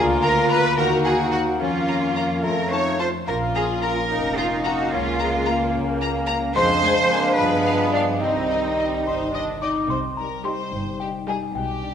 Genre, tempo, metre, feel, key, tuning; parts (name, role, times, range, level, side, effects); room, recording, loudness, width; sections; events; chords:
cinematic; 73 BPM (dotted quarters); 6/8; straight; Bb minor, C minor from 6.6 s; A4 = 440 Hz
celesta; melody; 0.0-11.9 s; D5 to Eb6; -29 LUFS; left 4 dB
mellow clarinet; second line; 0.0-9.6 s; Db4 to F4; -30 LUFS; equal
mellow hollow concert flute; second line; 0.0-9.6 s; Eb5 to Bb5; -28 LUFS; equal
rich studio violin section; second line; 0.0-11.9 s; D4 to Eb5; -29 LUFS; left 2 dB
clear bassoon; accompaniment; 0.0-9.6 s; G3 to Bb3; -29 LUFS; right 1 dB
rich studio viola section; accompaniment; 0.0-11.5 s; G3 to Gb4; -28 LUFS; right 1 dB
mellow French horn section; sustained chords; 0.0-11.9 s; Eb3 to Gb4; -31 LUFS; left 4 dB
concert harp; arpeggios; 0.0-11.9 s; F2 to Db5; -31 LUFS; left 6 dB
rich studio cello section; bass; 0.0-11.9 s; G2 to Db5; -25 LUFS; right 3 dB
rich studio double bass section; bass; 0.0-11.9 s; F1 to G2; -30 LUFS; right 3 dB
rich studio violin section; melody; 0.2-11.5 s; G4 to Bb5; -32 LUFS; left 3 dB
wet scoring stage reverb, RT60 1.7 s; -19 LUFS; side -8 dB against mid
0.0-9.9 A section; 9.9-11.9 B section
0.0 Bb7/D; 0.8 Ebm; 1.6 Bbm/F; 2.4 F; 3.3 Bbm; 4.9 Bbm/Db; 6.6 Ddim/F; 7.4 G7; 8.2 Cm